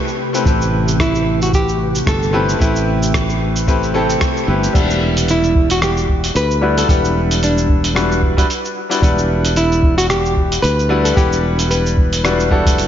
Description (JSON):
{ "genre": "sunset chillout", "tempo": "112 BPM", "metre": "4/4", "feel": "swing 56% on 16ths", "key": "E minor", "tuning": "A4 = 438 Hz", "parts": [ { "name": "ethereal airy pad", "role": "sustained chords", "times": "0.0-4.7 s", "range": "C3 to B4", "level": "-25 LUFS", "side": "left 1 dB", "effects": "ensemble chorus, built-in reverb" }, { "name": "dusty soul sampler-style drum kit", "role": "drums", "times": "0.1-12.9 s", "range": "crash cymbal, hi-hat, rim click, shaker", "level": "-22 LUFS", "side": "right 1 dB", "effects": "none" }, { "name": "bright grand piano", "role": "accompaniment", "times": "0.3-12.9 s", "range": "G3 to F#5", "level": "-19 LUFS", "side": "left 2 dB", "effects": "auto-pan, low-pass filter, tape echo, slapback echo" }, { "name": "sustaining fretless electric bass", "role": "bass", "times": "0.5-12.9 s", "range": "E1 to D2", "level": "-18 LUFS", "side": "equal", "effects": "none" }, { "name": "electronic kick drum", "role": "drums", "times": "0.5-12.8 s", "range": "none", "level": "-16 LUFS", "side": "equal", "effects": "none" }, { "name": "nylon-string guitar", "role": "melody", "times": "1.0-12.2 s", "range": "D4 to B4", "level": "-19 LUFS", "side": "equal", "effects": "ping-pong delay, slapback echo" } ], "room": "moderate lush hall reverb, RT60 2.6 s", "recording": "big arena sound, nothing above 7.4 kHz", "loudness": "-13 LUFS", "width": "side -10 dB against mid", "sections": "0.0-4.7 A section; 4.7-12.9 A section", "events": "filter sweep on grand piano 4.7-12.9", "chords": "0.0 Am9; 4.7 Em7", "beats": "| 0.46 1.00 1.53 2.07 | 2.60 3.14 3.67 4.21 | 4.75 5.28 5.82 6.35 | 6.89 7.42 7.96 8.50 | 9.03 9.57 10.10 10.64 | 11.18 11.71 12.25 12.78" }